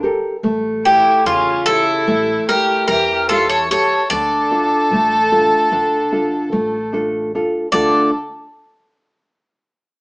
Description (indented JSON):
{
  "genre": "greek folk, Greek bouzouki band",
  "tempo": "148 BPM (eighths)",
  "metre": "9/8",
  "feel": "straight",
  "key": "D harmonic minor",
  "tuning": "A4 = 440 Hz",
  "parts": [
    { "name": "nylon-string guitar", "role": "accompaniment", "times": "0.0-8.1 s", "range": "C#3 to C#5", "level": "-19 LUFS", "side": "equal", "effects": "none" },
    { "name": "upright bass", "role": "bass", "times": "0.0-8.1 s", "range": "A1 to E2", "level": "-33 LUFS", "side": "equal", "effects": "none" },
    { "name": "Greek bouzouki", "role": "melody", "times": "0.9-8.1 s", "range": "F4 to D5", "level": "-15 LUFS", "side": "equal", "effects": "none" },
    { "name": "rich violin", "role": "second line", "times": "0.9-8.1 s", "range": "C#4 to A4", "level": "-18 LUFS", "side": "equal", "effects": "none" }
  ],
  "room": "wet studio reverb, RT60 0.8 s",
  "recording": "band playing live in one room, small speaker sound",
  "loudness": "-13 LUFS",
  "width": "side -35 dB against mid",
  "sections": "0.0-7.7 A section; 7.7-10.0 B section",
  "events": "none",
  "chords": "0.4 A7; 4.1 Dm"
}